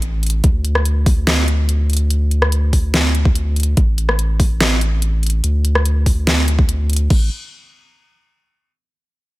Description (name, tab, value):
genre	future bass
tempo	144 BPM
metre	4/4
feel	half-time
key	unclear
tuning	A4 = 438 Hz
part	saturated sub bass	bass	0.0-7.3 s	A1 to D2	-16 LUFS	equal	sidechain pumping
part	pop drum kit	drums	0.0-7.2 s	crash cymbal, hi-hat, rim click, snare drum	-20 LUFS	equal	overdrive
part	electronic kick drum	drums	0.4-7.2 s	none	-14 LUFS	equal	overdrive
room	little or no reverb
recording	none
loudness	-14 LUFS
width	side -19 dB against mid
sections	0.0-7.1 A section; 7.1-8.8 B section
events	drop 0.0-7.1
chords	none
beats	0.02 | 0.44 0.85 1.27 1.69 | 2.10 2.52 2.94 3.35 | 3.77 4.19 4.61 5.02 | 5.44 5.86 6.27 6.69 | 7.11